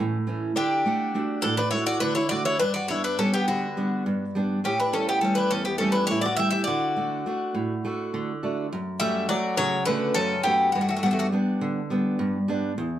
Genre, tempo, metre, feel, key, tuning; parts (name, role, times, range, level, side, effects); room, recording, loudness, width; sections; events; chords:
greek folk, Greek bouzouki band; 206 BPM (eighths); 7/8; straight; D major; A4 = 442 Hz
picked steel-string acoustic guitar; accompaniment; 0.0-13.0 s; E2 to F#5; -26 LUFS; right 2 dB
Greek bouzouki; melody; 0.6-11.3 s; F#4 to E5; -25 LUFS; equal; plate reverb
Greek bouzouki; second line; 0.6-11.3 s; C#3 to G4; -29 LUFS; left 4 dB
wet studio reverb, RT60 0.6 s; -22 LUFS; side -11 dB against mid
0.0-8.7 A section; 8.7-13.0 B section
0.0 A; 0.6 D; 2.6 G; 4.6 A7; 6.7 D; 8.7 F#m; 10.7 G